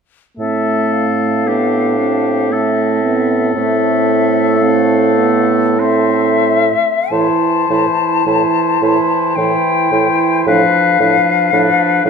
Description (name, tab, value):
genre	classical, slow romantic movement for wind quintet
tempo	41-58 BPM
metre	3/4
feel	rubato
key	A minor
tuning	A4 = 441 Hz
part	silver concert flute	melody	0.4-12.1 s	E5 to A5	-17 LUFS	left 7 dB	none
part	warm oboe	second line	0.4-12.1 s	G4 to C5	-19 LUFS	left 5 dB	none
part	bright clarinet	accompaniment	0.4-12.1 s	A3 to E4	-20 LUFS	right 8 dB	none
part	warm French horn	accompaniment	0.4-12.1 s	E3 to C4	-20 LUFS	equal	none
part	dark bassoon	bass	0.4-12.1 s	A2	-17 LUFS	right 3 dB	none
room	wet scoring stage reverb, RT60 1.7 s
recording	none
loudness	-11 LUFS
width	side -6 dB against mid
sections	0.4-7.1 A section; 7.1-12.1 B section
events	none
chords	0.4 Am; 10.5 Bm7b5/A